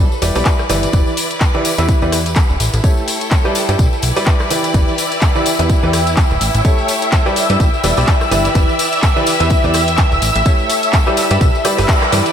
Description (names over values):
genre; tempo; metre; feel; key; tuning
piano house; 126 BPM; 4/4; swing 57% on 16ths; E dorian; A4 = 440 Hz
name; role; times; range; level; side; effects
plucky analog bass; bass; 0.0-12.2 s; D1 to G2; -18 LUFS; equal; sidechain pumping
clear studio string section; texture; 0.0-12.3 s; E4 to G5; -22 LUFS; left 1 dB; sidechain pumping
house drum kit; drums; 0.1-12.3 s; handclaps, hi-hat, rim click, tambourine; -21 LUFS; left 1 dB; none
tambourine; percussion; 0.1-12.3 s; none; -28 LUFS; left 7 dB; none
clear baby grand piano; riff; 0.2-12.3 s; E3 to E5; -19 LUFS; right 1 dB; sidechain pumping, analog delay
electronic kick drum; drums; 0.5-12.0 s; none; -14 LUFS; equal; overdrive
analog string pad; sustained chords; 4.7-12.3 s; E5 to E6; -19 LUFS; left 1 dB; ensemble chorus, sidechain pumping
room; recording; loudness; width
moderate lush hall reverb, RT60 2.0 s; dreamy mix soaked in reverb; -12 LUFS; side -8 dB against mid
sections
0.0-12.3 A section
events
band accent 11.9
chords
0.0 G6; 0.9 Em7; 2.6 A7; 3.6 G6; 4.7 Em7; 6.4 A7; 7.4 G6; 8.6 Em7; 10.2 A7; 11.2 G6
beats
0.46 | 0.93 1.41 1.89 2.36 | 2.84 3.31 3.79 4.27 | 4.74 5.22 5.70 6.17 | 6.65 7.12 7.60 8.08 | 8.55 9.03 9.51 9.98 | 10.46 10.93 11.41 11.89